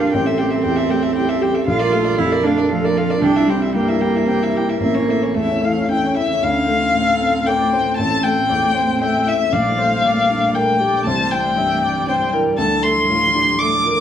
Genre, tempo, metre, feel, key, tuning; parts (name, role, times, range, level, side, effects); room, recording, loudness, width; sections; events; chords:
neoclassical piano and strings; 117 BPM; 3/4; rubato; D minor; A4 = 440 Hz
dark violin; melody; 0.0-14.0 s; C#5 to D6; -18 LUFS; left 3 dB; plate reverb
warm cello; second line; 0.0-14.0 s; E3 to F4; -22 LUFS; right 5 dB
dark viola; accompaniment; 0.0-14.0 s; C#4 to E5; -25 LUFS; right 4 dB
felt-muted upright piano; accompaniment; 0.0-14.0 s; A1 to Bb4; -21 LUFS; left 2 dB
granular cloud pad; sustained chords; 0.0-14.0 s; A3 to E5; -27 LUFS; right 1 dB; built-in reverb
wet studio reverb, RT60 0.7 s; heard from further back in the room; -15 LUFS; side -9 dB against mid
0.0-6.4 A section; 6.4-14.0 B section
0.1 Am7; 1.7 Bbmaj7; 3.2 C7; 4.8 A; 6.4 Dm7; 8.0 Am7; 9.5 Gmadd9/Bb; 11.1 Cadd9; 12.6 Dm7